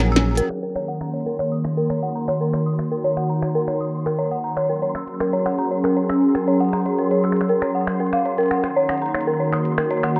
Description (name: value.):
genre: IDM.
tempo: 118 BPM.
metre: 4/4.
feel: straight.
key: unclear.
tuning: A4 = 440 Hz.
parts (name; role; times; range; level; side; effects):
phased analog pad; sustained chords; 0.0-10.2 s; Eb3 to Bb4; -24 LUFS; equal; phaser, chorus.
dark detuned synth bell; arpeggios; 0.0-10.2 s; Bb4 to E6; -25 LUFS; equal; chorus, tremolo, low-pass filter, digital delay.
glitchy drum kit; drums; 0.2-10.2 s; finger snaps, hi-hat, snare drum; -29 LUFS; equal; digital delay.
flickering grainy texture; texture; 1.4-10.2 s; C6; -38 LUFS; equal; built-in reverb.
room: moderate huge ambient reverb, RT60 6.2 s.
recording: dark, warm production, low-pass filter.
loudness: -21 LUFS.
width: mono.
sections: 0.5-10.2 A section.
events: drum fill 0.0-0.5; filter sweep on analog synth pad 0.5-10.2; filter sweep on synth bell 0.5-10.2; filter sweep 0.5-10.2.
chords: 0.0 Gb; 0.5 Ebm7; 4.6 Gb; 8.6 Ebm7.